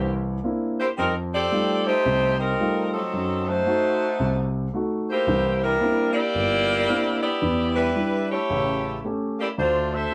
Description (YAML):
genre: jazz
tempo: 112 BPM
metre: 4/4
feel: swing 67% on 8ths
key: C mixolydian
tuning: A4 = 440 Hz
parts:
  - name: warm saxophone section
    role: melody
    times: 0.0-10.1 s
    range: F#3 to E5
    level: -25 LUFS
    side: equal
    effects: none
  - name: warm concert grand piano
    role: accompaniment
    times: 0.0-10.1 s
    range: G1 to G4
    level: -28 LUFS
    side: equal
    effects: none
room: moderate club ambience, RT60 0.5 s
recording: none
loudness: -23 LUFS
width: mono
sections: 0.0-10.1 A section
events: none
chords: 0.0 C9; 1.0 F9; 3.1 F#dim7; 5.3 C9; 7.4 Em7; 8.5 A7; 9.6 Dm7